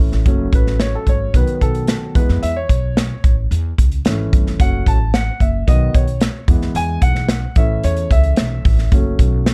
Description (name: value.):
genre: uptempo 1960s-style soul.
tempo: 111 BPM.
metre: 4/4.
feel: straight.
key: F# dorian.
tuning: A4 = 439 Hz.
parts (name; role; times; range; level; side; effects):
warm grand piano; accompaniment; 0.0-9.5 s; D#3 to A5; -24 LUFS; equal; none.
upright bass; bass; 0.0-9.5 s; F#1 to E#2; -21 LUFS; equal; none.
natural country drum kit; drums; 0.1-9.5 s; hi-hat, kick drum, snare drum; -18 LUFS; equal; none.
room: little or no reverb.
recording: dark, warm production.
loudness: -16 LUFS.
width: mono.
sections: 0.0-9.5 A section.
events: grand piano solo 0.0-9.5.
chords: 0.3 F#m; 1.3 B; 2.2 E; 3.2 A; 4.6 F#m; 5.7 B; 6.5 E; 7.6 A; 8.9 F#m.